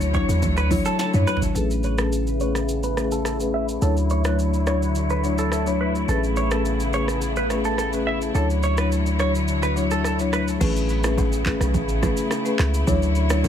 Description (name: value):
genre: afrobeats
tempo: 106 BPM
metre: 4/4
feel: straight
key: A major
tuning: A4 = 440 Hz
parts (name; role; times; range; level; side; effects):
- warm studio string section; sustained chords; 0.0-13.5 s; C#3 to C#5; -29 LUFS; left 1 dB; low-pass filter
- warm 808-style bass; bass; 0.0-13.5 s; G#1 to F#2; -23 LUFS; equal; none
- afro-pop drum kit; drums; 0.0-13.5 s; crash cymbal, handclaps, hi-hat, kick drum, rim click, shaker, snare drum, toms; -28 LUFS; right 1 dB; none
- marimba with medium mallets; accompaniment; 0.1-13.5 s; F#3 to C#5; -25 LUFS; left 4 dB; low-pass filter
- direct-recorded clean electric guitar; riff; 0.1-10.4 s; A4 to E5; -28 LUFS; right 4 dB; lush chorus, low-pass filter, digital delay
- bongos and congas; percussion; 0.1-1.4, 10.6-13.5 s; none; -31 LUFS; right 6 dB; none
room: light reverb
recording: heavily compressed radio sound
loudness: -20 LUFS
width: side -9 dB against mid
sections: 0.0-1.6 A section; 1.6-10.6 B section; 10.6-13.5 A section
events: drum fill 1.0-1.6; filter sweep 1.6-10.6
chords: 0.0 Dmaj9; 1.6 Amaj9; 3.8 Dmaj9; 6.1 Amaj9; 8.3 Dmaj9; 10.6 Amaj9; 12.9 Dmaj9